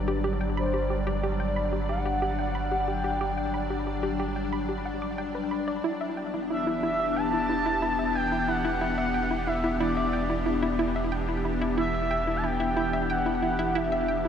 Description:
ambient, sequencer-driven space music; 91 BPM; 4/4; straight; E minor; A4 = 441 Hz
expressive synth lead; melody; 0.0-14.3 s; B4 to A5; -30 LUFS; right 1 dB; analog chorus, shimmer reverb, ping-pong delay
evolving wavetable pad; sustained chords; 0.0-14.3 s; E3 to D5; -30 LUFS; left 3 dB; ensemble chorus, built-in reverb, shimmer reverb
warm sub bass; bass; 0.0-14.3 s; E1 to G1; -33 LUFS; right 1 dB
bubbling stepped-filter texture; texture; 2.9-14.3 s; D4 to D5; -49 LUFS; equal
hollow square pluck; riff; 0.1-14.3 s; E4 to D6; -32 LUFS; right 1 dB; chorus, vintage 12-bit sampler grit, shimmer reverb, ping-pong delay
wet cathedral reverb, RT60 5.1 s; in a vast, echoing space; -25 LUFS; side -8 dB against mid
0.0-14.3 A section
0.0 Gmaj7; 5.8 Em7
| 0.57 1.23 1.89 2.55 | 3.21 3.87 4.53 5.19 | 5.85 6.50 7.17 7.82 | 8.48 9.14 9.80 10.46 | 11.12 11.78 12.44 13.10 | 13.76

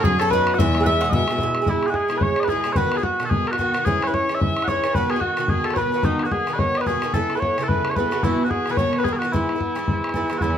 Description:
celtic folk, Celtic reel; 220 BPM; 4/4; swing 58% on 8ths; E major; A4 = 435 Hz
mellow small bagpipes; melody; 0.0-10.6 s; D#4 to F#5; -23 LUFS; equal
dark fiddle; second line; 0.0-10.6 s; D#4 to E5; -26 LUFS; left 5 dB
mandolin; second line; 0.0-1.4 s; G#4 to F#5; -27 LUFS; right 6 dB
Irish bouzouki; accompaniment; 0.0-10.6 s; G#2 to A4; -25 LUFS; right 4 dB
muted cello; bass; 0.0-1.4, 10.4-10.6 s; E2 to B2; -24 LUFS; equal
bodhran; percussion; 0.0-10.5 s; -25 LUFS; left 1 dB
moderate studio reverb, RT60 0.6 s; -19 LUFS; side -9 dB against mid
0.0-1.7 A section; 1.7-10.4 B section
0.0 B; 0.6 E; 2.8 B; 3.9 C#m; 4.9 B; 7.1 Aadd9; 8.2 Bsus4; 8.8 B; 9.3 E
0.04 0.31 | 0.58 0.86 1.13 1.40 | 1.67 1.95 2.22 2.49 | 2.76 3.04 3.31 3.58 | 3.85 4.13 4.40 4.67 | 4.95 5.22 5.50 5.77 | 6.04 6.32 6.59 6.86 | 7.14 7.41 7.68 7.96 | 8.23 8.51 8.78 9.05 | 9.33 9.60 9.88 10.15 | 10.42

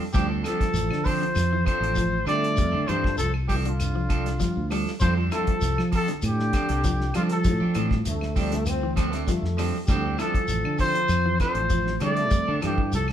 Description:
afrobeat; 99 BPM; 4/4; straight; A4 = 440 Hz
electric guitar at the edge of break-up; arpeggios; 0.0-12.8 s; D3 to E4; -32 LUFS; left 4 dB
clean electric guitar; stabs; 0.0-12.8 s; F3 to A4; -33 LUFS; right 4 dB
breathy trumpet; melody; 0.1-13.1 s; F4 to D5; -27 LUFS; left 1 dB
trombone with bucket mute; second line; 0.1-13.1 s; D3 to A3; -33 LUFS; right 4 dB
bright tine electric piano; accompaniment; 0.1-13.0 s; D3 to G4; -36 LUFS; right 1 dB; fast stereo tremolo
fingered electric bass; bass; 0.1-13.1 s; A1 to F3; -27 LUFS; equal
damped 70s drum kit; drums; 0.1-13.1 s; hi-hat, kick drum, snare drum; -28 LUFS; equal
shekere; percussion; 0.1-13.1 s; -34 LUFS; left 1 dB
claves; percussion; 0.4-13.1 s; -42 LUFS; left 2 dB
warm trombone section; second line; 8.1-9.7 s; G3 to C4; -32 LUFS; left 3 dB
light reverb; band playing live in one room; -22 LUFS; side -10 dB against mid
0.0-13.1 A section
0.1 Dm7; 5.0 F6; 9.9 Dm7
| 0.15 0.75 1.36 1.97 | 2.58 3.19 3.79 4.40 | 5.01 5.62 6.23 6.84 | 7.45 8.06 8.66 9.27 | 9.88 10.49 11.10 11.71 | 12.32 12.92

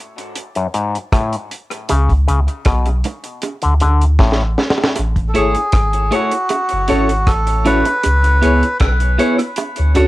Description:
dub reggae; 78 BPM; 4/4; straight; A4 = 441 Hz
deep reggae drum kit; drums; 0.2-10.1 s; hi-hat, kick drum, rim click, snare drum; -18 LUFS; equal; cassette tape
auto-wah clav; riff; 0.6-4.4 s; F#2 to D3; -21 LUFS; left 3 dB; overdrive, cassette tape, tape echo
warm sub bass; bass; 1.9-10.1 s; F#1 to D2; -15 LUFS; equal
bongos; percussion; 1.9-10.1 s; -26 LUFS; right 4 dB; high-pass filter on perc, tape echo
melodica; melody; 5.3-8.8 s; F#4 to B4; -18 LUFS; equal; tape echo
clean electric guitar; accompaniment; 5.3-10.1 s; A3 to C#5; -19 LUFS; right 3 dB; high-pass filter, cassette tape, tape echo
bright reed electric piano; stabs; 5.3-10.1 s; D4 to C#5; -22 LUFS; left 5 dB; fast tremolo, high-pass filter, cassette tape, tape echo
light reverb; home recording on cassette; -13 LUFS; side -17 dB against mid
0.0-5.0 A section; 5.0-10.1 A section
break 0.0-5.0; drum fill 4.2-5.0
0.0 N.C.; 1.9 Bsus2; 3.4 D5; 5.0 Amaj7; 6.5 F#m7; 8.0 C#m7; 9.6 Dmaj7
0.36 1.13 | 1.90 2.66 3.43 4.20 | 4.97 5.74 6.50 7.27 | 8.04 8.81 9.57

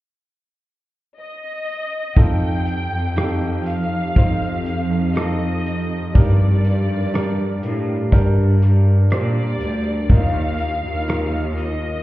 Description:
pop ballad; 61 BPM; 4/4; straight; A4 = 440 Hz
rich studio violin section; melody; 1.2-12.0 s; D5 to G5; -28 LUFS; left 1 dB
clear grand piano; accompaniment; 2.2-12.0 s; G2 to C5; -26 LUFS; right 2 dB
glassy FM pad; sustained chords; 2.2-12.0 s; F3 to Bb4; -29 LUFS; equal; ensemble chorus, built-in reverb
bright studio cello section; bass; 2.2-12.0 s; D2 to Bb2; -19 LUFS; equal
natural country drum kit; drums; 2.2-11.8 s; hi-hat, kick drum, rim click; -16 LUFS; equal
small room ambience; heard muffled through a wall, stone room reverb, EQ; -17 LUFS; side -16 dB against mid
0.0-2.2 A section; 2.2-12.0 B section
0.0 N.C.; 2.2 F7; 6.2 Gm; 10.1 Ebsus2
0.19 1.17 | 2.17 3.17 4.17 5.17 | 6.16 7.14 8.13 9.11 | 10.10 11.09

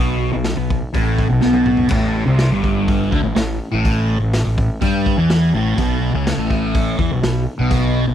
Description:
psychedelic rock; 124 BPM; 4/4; straight; A4 = 440 Hz
fuzz guitar; riff; 0.0-8.1 s; G2 to G3; -17 LUFS; equal; distortion, phaser
fuzz fingered electric bass; bass; 0.0-8.1 s; G1 to G2; -21 LUFS; equal; overdrive
raw garage drum kit; drums; 0.4-7.8 s; crash cymbal, hi-hat, kick drum, snare drum, toms; -22 LUFS; equal
small room reverb; dry, close 1970s-style studio recording; -15 LUFS; side -10 dB against mid
0.0-8.1 A section
drum fill 1.4-1.9
0.0 N.C.; 1.9 A5; 5.8 Bsus2/A
0.47 0.95 1.44 | 1.92 2.40 2.88 3.37 | 3.85 4.33 4.82 5.30 | 5.78 6.26 6.75 7.23 | 7.71

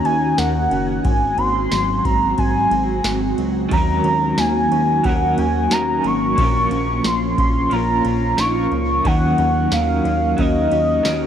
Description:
dream pop; 90 BPM; 4/4; straight; Eb dorian; A4 = 440 Hz
warm velvety synth lead; melody; 0.0-11.3 s; Eb5 to Db6; -20 LUFS; equal; chorus, tape echo, shimmer reverb
ethereal airy pad; sustained chords; 0.0-11.3 s; Eb3 to Gb4; -23 LUFS; right 1 dB; ensemble chorus, built-in reverb, shimmer reverb
mellow electric guitar; arpeggios; 0.0-11.3 s; Ab2 to Bb4; -24 LUFS; left 3 dB; analog chorus, tape echo, shimmer reverb
booming analog drum machine; drums; 0.0-11.2 s; kick drum, ride cymbal, snare drum, tambourine; -21 LUFS; equal; overdrive
chorused synth bass; bass; 0.1-11.3 s; Gb1 to Eb2; -24 LUFS; equal
electric guitar at the edge of break-up; accompaniment; 3.7-11.3 s; Bb2 to Bb4; -25 LUFS; right 4 dB; tremolo, wide subtle chorus, shimmer reverb
moderate concert hall reverb, RT60 2.3 s; worn, warbling old tape, cassette tape, warbly pitch drift; -16 LUFS; side -9 dB against mid
0.0-11.3 A section
0.0 Ebm7; 1.0 Ab7; 3.7 Ebm7; 6.4 Bbm; 9.0 Ebm7
0.38 | 1.05 1.72 2.38 3.05 | 3.71 4.38 5.05 5.71 | 6.38 7.05 7.71 8.38 | 9.05 9.71 10.38 11.05

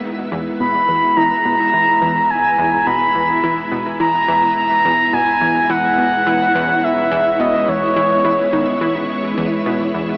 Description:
ambient, sequencer-driven space music; 106 BPM; 4/4; straight; E lydian; A4 = 441 Hz
string machine, full ensemble; sustained chords; 0.0-10.2 s; G#3 to F#5; -22 LUFS; equal; ensemble chorus
warm sub bass; bass; 0.0-10.2 s; E1; -42 LUFS; equal
twinkling granular texture; texture; 0.0-10.2 s; E4; -28 LUFS; equal; built-in reverb
analog pluck; riff; 0.3-10.1 s; E2 to E3; -23 LUFS; equal; chorus, tape echo
breathy flute-like synth lead; melody; 0.6-8.8 s; C#5 to B5; -14 LUFS; equal; chorus, phaser, tape echo
wet huge ambient reverb, RT60 7.2 s; cassette tape, AM radio sound; -13 LUFS; side -30 dB against mid
0.0-10.2 A section
0.0 E
| 0.04 0.60 1.17 1.74 | 2.30 2.87 3.44 4.00 | 4.57 5.13 5.70 6.26 | 6.83 7.40 7.96 8.53 | 9.10 9.66

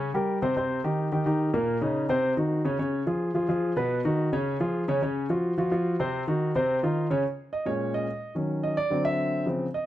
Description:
jazz; 216 BPM; 4/4; straight; Bb minor; A4 = 439 Hz
warm concert grand piano; solo; 0.0-9.9 s; Bb2 to E5; -24 LUFS; equal
light reverb; -24 LUFS; side -13 dB against mid
0.0-7.2 A section; 7.2-9.9 B section
grand piano solo 7.2-9.9
0.0 Bbm69; 0.6 Eb6; 1.7 Eb5; 2.2 Cdim; 2.8 Db; 3.9 Badd9; 4.5 Db; 5.0 Gb5; 6.1 Cdim; 6.7 F5; 7.2 Bbm7; 8.4 Ebm7; 8.9 D9
0.00 0.28 | 0.56 0.84 1.12 1.40 | 1.67 1.95 2.23 2.51 | 2.79 3.07 3.35 3.62 | 3.90 4.18 4.46 4.74 | 5.02 5.29 5.57 5.85 | 6.13 6.41 6.69 6.96 | 7.24 7.52 7.80 8.08 | 8.36 8.63 8.91 9.19 | 9.47 9.74

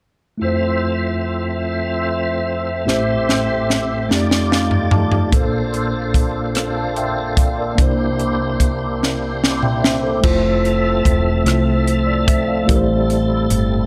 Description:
slow gospel; 49 BPM (dotted quarters); 6/8; straight; F major; A4 = 440 Hz
mellow tine electric piano; accompaniment; 0.4-13.9 s; A1 to A5; -22 LUFS; equal
tonewheel organ; sustained chords; 0.4-13.9 s; F3 to E5; -25 LUFS; equal; fast rotary speaker, overdrive, chorus vibrato
warm French horn section; sustained chords; 0.4-10.2 s; F3 to E5; -30 LUFS; equal
crisp fusion drum kit; drums; 2.9-13.7 s; crash cymbal, hi-hat, kick drum, rim click, snare drum, toms; -20 LUFS; equal
woody fretless electric bass; bass; 10.2-13.9 s; E1 to C2; -22 LUFS; equal
light reverb; -18 LUFS; mono
0.4-10.2 A section; 10.2-13.9 B section
drum fill 2.9-5.3, 9.0-10.2; tine electric piano fill 4.1-5.3
0.4 Fmaj7; 2.9 Am7; 4.1 F13; 5.3 Bbmaj9; 7.8 C9; 10.2 Fmaj7; 12.7 Am7
| 0.40 1.63 | 2.86 4.09 | 5.32 6.55 | 7.78 9.01 | 10.24 11.46 | 12.69

